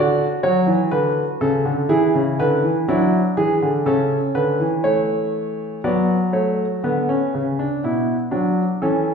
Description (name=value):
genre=classical, baroque-style 3-part fugue for grand piano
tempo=61 BPM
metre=4/4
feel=straight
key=unclear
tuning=A4 = 436 Hz
part: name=warm concert grand piano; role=solo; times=0.0-9.1 s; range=B2 to D5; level=-17 LUFS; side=equal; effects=none
room=wet recital hall reverb, RT60 1.6 s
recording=heard from further back in the room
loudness=-17 LUFS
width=side -6 dB against mid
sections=0.0-5.8 A section; 5.8-9.1 B section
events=none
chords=0.0 D; 1.9 E7; 3.9 A/C#; 5.8 F#m; 7.8 Bm